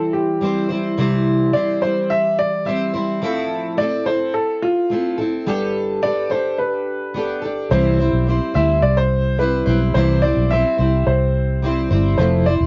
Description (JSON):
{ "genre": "acoustic pop", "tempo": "107 BPM", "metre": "4/4", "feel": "straight", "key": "C major", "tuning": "A4 = 440 Hz", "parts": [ { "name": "clear upright piano", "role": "melody", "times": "0.0-12.5 s", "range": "F4 to E5", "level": "-22 LUFS", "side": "equal", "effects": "none" }, { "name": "fingerpicked plugged-in steel-string acoustic guitar", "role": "accompaniment", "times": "0.0-12.7 s", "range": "C3 to C5", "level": "-23 LUFS", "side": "equal", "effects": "double-tracked, cassette tape" }, { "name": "vintage muted fingered electric bass", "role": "bass", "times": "7.7-12.7 s", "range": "E1 to D2", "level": "-20 LUFS", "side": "equal", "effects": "none" } ], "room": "light reverb", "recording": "home recording on cassette, nothing above 7.5 kHz", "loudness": "-19 LUFS", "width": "mono", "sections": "0.0-7.7 A section; 7.7-12.7 B section", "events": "none", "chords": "0.0 C; 3.2 Fmaj7; 5.5 Gadd9; 7.7 C" }